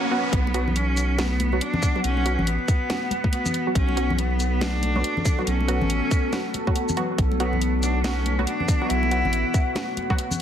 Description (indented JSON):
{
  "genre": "deep dubstep",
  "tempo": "140 BPM",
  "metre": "4/4",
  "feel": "swing 62% on 16ths, half-time",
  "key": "B minor",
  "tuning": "A4 = 443 Hz",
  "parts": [
    { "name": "rich cello", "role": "melody", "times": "0.0-9.8 s", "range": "B3 to E4", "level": "-28 LUFS", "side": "equal", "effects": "dub echo" },
    { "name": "filtered dub chord stab", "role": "stabs", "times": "0.1-10.2 s", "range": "F#3 to F#4", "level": "-30 LUFS", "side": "right 2 dB", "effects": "chorus, dub echo" },
    { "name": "deep dark ambient pad", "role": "sustained chords", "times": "0.8-10.4 s", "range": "B3 to F#5", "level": "-29 LUFS", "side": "left 1 dB", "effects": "chorus, built-in reverb" },
    { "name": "saturated sub bass", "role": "bass", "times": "0.3-9.4 s", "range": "A1 to B1", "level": "-24 LUFS", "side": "equal", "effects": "none" },
    { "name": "electronic kick drum", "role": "drums", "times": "0.3-10.2 s", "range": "none", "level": "-22 LUFS", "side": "equal", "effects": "none" },
    { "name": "garage drum kit", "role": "drums", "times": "0.3-10.4 s", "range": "hi-hat, shaker, snare drum", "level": "-30 LUFS", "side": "equal", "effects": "high-pass filter on snare, high-pass filter on hats, high-pass filter on perc" },
    { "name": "congas", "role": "percussion", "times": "0.5-10.4 s", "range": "none", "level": "-31 LUFS", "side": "left 2 dB", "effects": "none" }
  ],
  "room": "light reverb, digital ambience",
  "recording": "dense, heavily limited modern master, vinyl crackle",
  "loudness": "-21 LUFS",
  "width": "side -9 dB against mid",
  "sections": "0.3-10.4 A section",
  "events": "break 0.0-0.3; drop 0.3-10.4",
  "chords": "0.3 B5",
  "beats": "| 0.33 0.76 1.19 1.61 | 2.04 2.47 2.90 3.33 | 3.76 4.18 4.61 5.04 | 5.47 5.90 6.33 6.76 | 7.18 7.61 8.04 8.47 | 8.90 9.33 9.76 10.19"
}